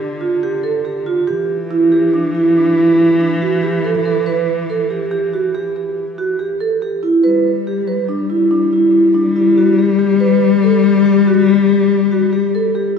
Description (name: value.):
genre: contemporary instrumental, chamber music in an uneven meter.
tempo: 141 BPM.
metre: 7/4.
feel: straight.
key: unclear.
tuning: A4 = 445 Hz.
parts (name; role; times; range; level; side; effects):
dark cello; second line; 0.0-13.0 s; D3 to G3; -16 LUFS; left 7 dB; none.
vibraphone with medium mallets; arpeggios; 0.0-12.9 s; D4 to B4; -14 LUFS; right 2 dB; none.
room: wet concert hall reverb, RT60 1.9 s.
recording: recorded in a church or concert hall, lossy compression artefacts.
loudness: -12 LUFS.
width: side -6 dB against mid.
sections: 0.0-13.0 A section.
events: none.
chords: 0.0 Bb (rootless); 1.3 Em.